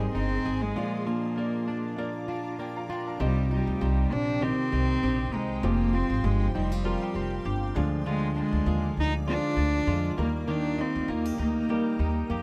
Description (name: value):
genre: pop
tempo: 99 BPM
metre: 4/4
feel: swing 55% on 16ths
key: C minor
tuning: A4 = 440 Hz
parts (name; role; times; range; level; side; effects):
- rich cello; melody; 0.0-12.4 s; G3 to Eb4; -32 LUFS; equal; none
- clear upright piano; accompaniment; 0.0-12.4 s; G3 to C6; -41 LUFS; equal; none
- fingerpicked plugged-in steel-string acoustic guitar; accompaniment; 0.0-12.4 s; F2 to Ab4; -35 LUFS; equal; none
- shimmering ambient pad; sustained chords; 0.0-12.4 s; F4 to Eb6; -44 LUFS; equal; chorus, built-in reverb
- twelve-string electric guitar; arpeggios; 0.0-12.4 s; F3 to Ab4; -40 LUFS; equal; none
- upright bass; bass; 0.0-12.4 s; F1 to F2; -31 LUFS; equal; none
room: little or no reverb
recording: close, detailed microphones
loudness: -28 LUFS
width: mono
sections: 0.0-3.2 A section; 3.2-12.4 B section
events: break 0.8-3.2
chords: 0.0 Ab; 0.8 Bb; 3.2 Cm; 5.6 Fmadd9; 7.8 Ddim; 10.2 Eb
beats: 0.15 | 0.76 1.37 1.98 2.58 | 3.19 3.80 4.41 5.02 | 5.62 6.23 6.84 7.45 | 8.05 8.66 9.27 9.88 | 10.48 11.09 11.69 12.30